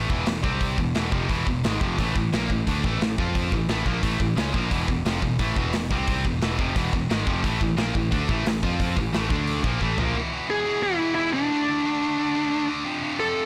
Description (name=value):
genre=heavy metal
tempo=176 BPM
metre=4/4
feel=straight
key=E phrygian dominant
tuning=A4 = 440 Hz
part: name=scooped high-gain guitar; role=riff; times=0.0-13.5 s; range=E2 to F4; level=-31 LUFS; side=equal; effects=distortion
part: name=tight distorted guitar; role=riff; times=0.0-10.2 s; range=E2 to F4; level=-31 LUFS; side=equal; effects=distortion
part: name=picked electric bass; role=bass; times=0.0-10.1 s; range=E1 to F2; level=-30 LUFS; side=equal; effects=none
part: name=big rock drum kit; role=drums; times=0.1-10.1 s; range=hi-hat, kick drum, snare drum, toms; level=-29 LUFS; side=equal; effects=none
part: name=high-gain lead guitar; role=melody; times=10.5-13.5 s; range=D4 to A4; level=-26 LUFS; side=equal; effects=distortion, digital delay
room=light reverb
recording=blown-out, overdriven recording, overdrive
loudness=-24 LUFS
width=mono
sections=0.0-10.2 A section; 10.2-13.5 B section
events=drum fill 9.8-10.2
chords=0.5 C5; 0.8 E; 2.0 A5; 3.2 F5; 3.5 A5; 4.7 E5; 5.9 C5; 6.2 E; 7.4 A5; 8.6 F5; 9.0 A5; 9.3 D5; 9.6 A5; 10.2 E; 11.5 D5; 12.9 F